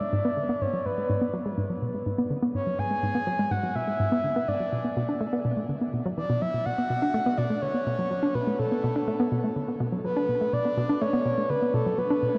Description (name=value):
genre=ambient, sequencer-driven space music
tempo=124 BPM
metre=4/4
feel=straight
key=unclear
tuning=A4 = 438 Hz
part: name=breathy flute-like synth lead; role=melody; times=0.0-12.4 s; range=A4 to G#5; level=-31 LUFS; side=equal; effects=chorus, tape echo
part: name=hollow square pluck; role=riff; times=0.0-12.4 s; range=G#2 to D4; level=-29 LUFS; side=equal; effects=chorus, tape echo
room=wet huge ambient reverb, RT60 6.9 s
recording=worn, warbling old tape, cassette tape, warbly pitch drift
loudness=-27 LUFS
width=mono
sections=0.0-12.4 A section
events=filter sweep on synth arpeggio sound 0.0-12.4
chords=0.0 G#dim; 4.7 Bm